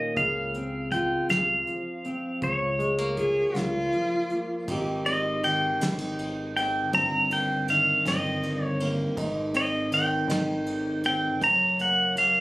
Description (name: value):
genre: acoustic folk-pop ballad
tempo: 53 BPM (dotted quarters)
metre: 6/8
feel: straight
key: Ab major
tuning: A4 = 436 Hz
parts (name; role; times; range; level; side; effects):
- pedal steel guitar; melody; 0.0-12.4 s; Db5 to Bb5; -24 LUFS; equal; none
- fingerpicked plugged-in steel-string acoustic guitar; accompaniment; 0.0-12.4 s; Gb2 to G4; -30 LUFS; equal; none
- deep dub fingered electric bass; bass; 0.2-12.4 s; Gb1 to Db2; -35 LUFS; equal; none
- soft brush drum kit; drums; 0.2-12.3 s; hi-hat, kick drum, ride cymbal, snare drum; -36 LUFS; equal; none
- dark cello; second line; 3.2-4.7 s; F4 to Ab4; -26 LUFS; equal; none
room: light reverb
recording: recorded on a phone in the room, club reverb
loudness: -23 LUFS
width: side -20 dB against mid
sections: 0.0-4.7 A section; 4.7-12.4 B section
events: none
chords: 0.2 Bbmadd9/Db; 4.7 Abmaj7; 6.9 Cm7/G; 9.2 Abmaj7; 11.4 Gb